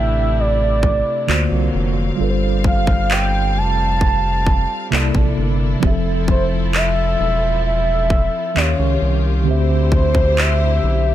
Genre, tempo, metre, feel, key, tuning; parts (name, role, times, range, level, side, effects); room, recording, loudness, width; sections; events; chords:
contemporary R&B; 66 BPM; 4/4; straight; C major; A4 = 440 Hz
gliding portamento lead; melody; 0.0-11.1 s; C5 to A5; -21 LUFS; right 1 dB; chorus, digital delay
mellow tine electric piano; accompaniment; 0.0-11.1 s; C3 to F5; -22 LUFS; right 1 dB; medium stereo tremolo
rich studio string section; sustained chords; 0.0-11.1 s; C3 to E#5; -27 LUFS; left 2 dB
rubbery square bass; bass; 0.0-11.1 s; E1 to Eb2; -19 LUFS; equal
trap drum kit; drums; 0.8-10.6 s; handclaps, kick drum; -18 LUFS; equal
digital ambience; -15 LUFS; side -12 dB against mid
0.0-11.1 A section
0.0 C69; 1.3 D7alt; 2.2 G9sus4; 4.9 C13; 5.8 Fmaj7; 8.6 Eb9; 9.5 D13sus4